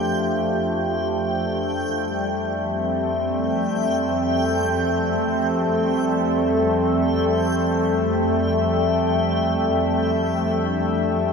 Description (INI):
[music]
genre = ambient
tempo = free time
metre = none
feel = none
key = F major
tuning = A4 = 440 Hz
[part]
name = warm analog pad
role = sustained chords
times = 0.0-11.3 s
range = F3 to E5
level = -20 LUFS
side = left 1 dB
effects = chorus
[part]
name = dark studio cello section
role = bass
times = 0.0-11.3 s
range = F2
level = -28 LUFS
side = equal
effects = none
[part]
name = backwards swelling texture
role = texture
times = 0.0-11.3 s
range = G5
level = -29 LUFS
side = right 2 dB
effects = built-in reverb
[sound]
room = wet huge ambient reverb, RT60 9.3 s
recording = dreamy mix soaked in reverb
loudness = -19 LUFS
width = side -5 dB against mid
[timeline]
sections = 0.0-11.3 A section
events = none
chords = 0.0 Fmaj7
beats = free time